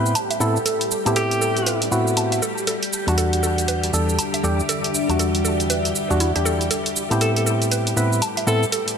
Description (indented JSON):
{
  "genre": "deep house",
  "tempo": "119 BPM",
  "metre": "4/4",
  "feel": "swing 61% on 16ths",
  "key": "A dorian",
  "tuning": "A4 = 440 Hz",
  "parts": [
    { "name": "percussive organ stab", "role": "stabs", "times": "0.0-8.6 s", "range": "E2 to B4", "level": "-21 LUFS", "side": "equal", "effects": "chorus, ping-pong delay" },
    { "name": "deep dark ambient pad", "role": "texture", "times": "0.6-9.0 s", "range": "G3 to B5", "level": "-28 LUFS", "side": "left 1 dB", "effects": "chorus, built-in reverb" },
    { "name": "string machine, violins", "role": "texture", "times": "0.0-9.0 s", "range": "G3 to G4", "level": "-30 LUFS", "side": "equal", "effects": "ensemble chorus" },
    { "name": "electronic shaker and hi-hat", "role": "drums", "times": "0.1-9.0 s", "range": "none", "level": "-25 LUFS", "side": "right 2 dB", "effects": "none" },
    { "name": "mallet-like synth pluck", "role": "arpeggios", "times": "0.2-8.8 s", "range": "E4 to A5", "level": "-29 LUFS", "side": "right 2 dB", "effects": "chorus, ping-pong delay" },
    { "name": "clear alto saxophone", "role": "melody", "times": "1.2-1.9, 7.2-8.7 s", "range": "G4 to A4", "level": "-27 LUFS", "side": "left 1 dB", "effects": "ping-pong delay" }
  ],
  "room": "moderate echo chamber reverb, RT60 1.7 s, digital ambience",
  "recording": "dense, heavily limited modern master",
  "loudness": "-18 LUFS",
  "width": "side -7 dB against mid",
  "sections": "0.0-9.0 A section",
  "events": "filter sweep on synth arpeggio sound 0.0-9.0",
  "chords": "0.0 Am9; 2.4 Em7; 6.7 Am9",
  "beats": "0.15 | 0.66 1.16 1.67 2.17 | 2.67 3.18 3.68 4.19 | 4.69 5.19 5.70 6.20 | 6.71 7.21 7.71 8.22 | 8.72"
}